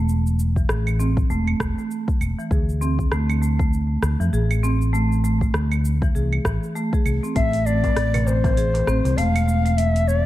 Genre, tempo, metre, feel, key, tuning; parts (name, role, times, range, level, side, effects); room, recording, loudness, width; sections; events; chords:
organic downtempo; 99 BPM; 4/4; swing 58% on 16ths; A harmonic minor; A4 = 440 Hz
marimba with hard mallets; arpeggios; 0.0-10.2 s; E3 to G#4; -25 LUFS; right 2 dB; low-pass filter, tape echo
mellow fretless electric bass; bass; 0.0-10.3 s; E1 to F2; -21 LUFS; equal; sidechain pumping
afro-pop drum kit; drums; 0.1-10.2 s; claves, hi-hat, rim click, shaker; -30 LUFS; right 1 dB; overdrive
electronic kick drum; drums; 0.6-8.5 s; -22 LUFS; equal; overdrive
hollow Native American-style cedar flute; melody; 7.4-10.3 s; C5 to F5; -23 LUFS; left 3 dB; tape echo
quartz singing bowl; texture; 7.4-10.3 s; C4; -33 LUFS; left 13 dB
darbuka; percussion; 7.8-9.2 s; -31 LUFS; right 2 dB
small room ambience; -18 LUFS; side -15 dB against mid
0.0-10.3 A section
filter sweep on marimba 0.0-10.3
0.0 A5; 2.5 D7(no3); 7.4 Am